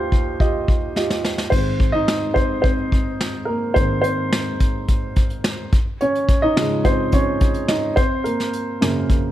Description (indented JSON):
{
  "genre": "piano-driven pop",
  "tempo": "107 BPM",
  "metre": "4/4",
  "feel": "straight",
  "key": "Ab major",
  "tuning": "A4 = 440 Hz",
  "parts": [
    { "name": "warm upright piano", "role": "accompaniment", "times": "0.0-9.3 s", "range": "Eb2 to Eb5", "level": "-20 LUFS", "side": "right 1 dB", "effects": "none" },
    { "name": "vintage brush drum kit", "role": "drums", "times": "0.1-9.2 s", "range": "crash cymbal, hi-hat, kick drum, snare drum", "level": "-20 LUFS", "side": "equal", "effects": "none" }
  ],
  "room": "light reverb",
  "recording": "none",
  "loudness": "-17 LUFS",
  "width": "side -13 dB against mid",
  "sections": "0.0-1.5 A section; 1.5-9.3 B section",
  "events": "drum fill 1.0-1.5; upright piano solo 1.5-9.3",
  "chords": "0.0 Ebadd9; 1.5 Ab; 5.7 Dbadd9; 8.0 Gb"
}